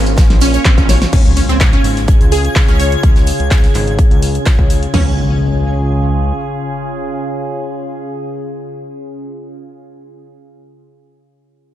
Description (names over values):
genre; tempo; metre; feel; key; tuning
progressive house; 126 BPM; 4/4; straight; Db major; A4 = 440 Hz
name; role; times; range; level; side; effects
evolving wavetable pad; sustained chords; 0.0-9.5 s; Db3 to Ab4; -21 LUFS; right 1 dB; phaser, built-in reverb, sidechain pumping
fat analog bass; bass; 0.0-6.3 s; Ab1 to Db2; -15 LUFS; equal; sidechain pumping
big-room dance drum kit; drums; 0.1-4.9 s; crash cymbal, handclaps, hi-hat, ride cymbal, snare drum, tambourine; -20 LUFS; equal; studio reverb
big-room dance drum kit; drums; 0.2-5.1 s; crash cymbal, kick drum, snare drum, toms; -10 LUFS; equal; studio reverb
modern studio drum kit; drums; 0.2-4.8 s; hi-hat, snare drum; -31 LUFS; right 3 dB; sidechain pumping on hats, high-pass filter on hats, studio reverb, high-pass filter on snare, high-pass filter on room
wide unison pluck; arpeggios; 0.4-5.2 s; Db3 to Db5; -20 LUFS; right 2 dB; phaser, sidechain pumping, ping-pong delay
impact; sound effects; 1.2-9.7 s; none; -24 LUFS; left 1 dB; none
twinkling granular texture; texture; 1.4-4.9 s; Ab6; -29 LUFS; left 2 dB; built-in reverb, sidechain pumping
room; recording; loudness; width
little or no reverb; none; -11 LUFS; side -12 dB against mid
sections
0.0-1.1 A section; 1.1-4.9 B section; 4.9-8.7 C section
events
drop 0.0-1.1; drum fill 0.2-1.1; impact 1.1-3.0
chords
0.0 Bbm; 1.1 Db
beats
0.18 0.65 | 1.13 1.60 2.08 2.56 | 3.03 3.51 3.98 4.46 | 4.94 5.41 5.89 6.37 | 6.84 7.32 7.79 8.27